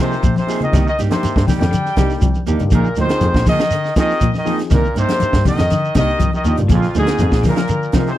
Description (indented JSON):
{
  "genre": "afrobeat",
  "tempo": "121 BPM",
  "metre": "4/4",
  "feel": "straight",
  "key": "unclear",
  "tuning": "A4 = 440 Hz",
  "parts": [
    { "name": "mellow horn section", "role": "melody", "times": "0.0-8.1 s", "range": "F4 to G5", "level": "-21 LUFS", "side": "left 1 dB", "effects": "none" },
    { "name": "trombone with straight mute", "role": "second line", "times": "0.0-8.1 s", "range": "F2 to G3", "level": "-27 LUFS", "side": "right 5 dB", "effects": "none" },
    { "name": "overdriven tine electric piano", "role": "accompaniment", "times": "0.0-8.2 s", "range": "Bb3 to Bb4", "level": "-26 LUFS", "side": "left 8 dB", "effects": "none" },
    { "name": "clean electric guitar", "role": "arpeggios", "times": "0.0-8.1 s", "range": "C3 to F3", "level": "-22 LUFS", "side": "left 6 dB", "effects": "analog chorus" },
    { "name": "clean electric guitar", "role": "stabs", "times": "0.0-8.1 s", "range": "F3 to Ab4", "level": "-23 LUFS", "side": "right 9 dB", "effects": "tape echo" },
    { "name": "compact cocktail drum kit", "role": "drums", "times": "0.1-8.1 s", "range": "hi-hat, kick drum, snare drum", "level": "-18 LUFS", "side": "equal", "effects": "none" },
    { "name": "shekere", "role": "percussion", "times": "0.1-8.2 s", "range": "none", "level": "-24 LUFS", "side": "right 2 dB", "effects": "none" },
    { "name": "warm double bass", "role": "bass", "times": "0.2-7.4 s", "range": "Bb1 to Bb2", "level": "-18 LUFS", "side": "equal", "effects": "none" },
    { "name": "congas", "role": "percussion", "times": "0.4-8.1 s", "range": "none", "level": "-23 LUFS", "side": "left 3 dB", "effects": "none" }
  ],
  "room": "little or no reverb",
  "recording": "dry, close 1970s-style studio recording",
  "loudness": "-13 LUFS",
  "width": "side -13 dB against mid",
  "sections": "0.0-8.2 A section",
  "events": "none",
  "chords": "0.0 Bb7sus4; 0.7 Cm7; 2.7 Bb7sus4; 4.7 Cm7; 6.7 Bb7sus4"
}